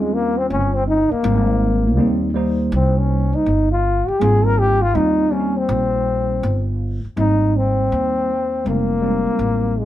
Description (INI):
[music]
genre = hip hop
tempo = 81 BPM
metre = 4/4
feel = swing 65% on 16ths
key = Ab major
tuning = A4 = 441 Hz
[part]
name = breathy trombone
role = melody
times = 0.0-9.8 s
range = Ab3 to Bb4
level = -19 LUFS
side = left 2 dB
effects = none
[part]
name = mellow tine electric piano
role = accompaniment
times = 0.0-9.8 s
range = G3 to C5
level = -23 LUFS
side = right 1 dB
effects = medium stereo tremolo
[part]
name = upright bass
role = bass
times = 0.0-9.8 s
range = F1 to Eb2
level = -20 LUFS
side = equal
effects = none
[sound]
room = light reverb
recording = band playing live in one room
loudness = -16 LUFS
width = side -13 dB against mid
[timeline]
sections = 0.0-7.2 A section; 7.2-9.8 B section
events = trombone solo 0.0-7.2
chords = 0.0 Eb13; 1.2 Abmaj9; 8.7 Fm9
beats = 0.51 | 1.25 1.99 2.73 3.47 | 4.21 4.95 5.69 6.43 | 7.17 7.91 8.65 9.39